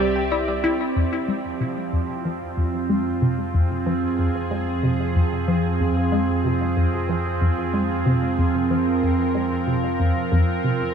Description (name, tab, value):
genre	ambient, sequencer-driven space music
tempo	93 BPM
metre	4/4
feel	straight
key	F minor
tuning	A4 = 440 Hz
part	evolving wavetable pad	sustained chords	0.0-10.9 s	F3 to E5	-23 LUFS	right 3 dB	chorus, built-in reverb
part	thumb-piano-like synth pluck	arpeggios	0.0-0.7 s	E4 to G5	-32 LUFS	left 4 dB	chorus, auto-pan, ping-pong delay
part	resonant blip pluck	riff	0.0-10.7 s	F2 to E4	-23 LUFS	left 1 dB	phaser, lush chorus, cassette tape, ping-pong delay
part	round analog bass	bass	0.0-10.9 s	C2 to F2	-29 LUFS	equal	none
room	moderate huge ambient reverb, RT60 7.7 s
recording	none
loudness	-20 LUFS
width	side -7 dB against mid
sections	1.0-10.9 A section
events	filter sweep on synth arpeggio sound 1.0-10.9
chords	0.0 C; 1.0 Fm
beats	0.32 | 0.96 1.61 2.25 2.90 | 3.54 4.19 4.83 5.48 | 6.12 6.77 7.41 8.06 | 8.70 9.35 9.99 10.64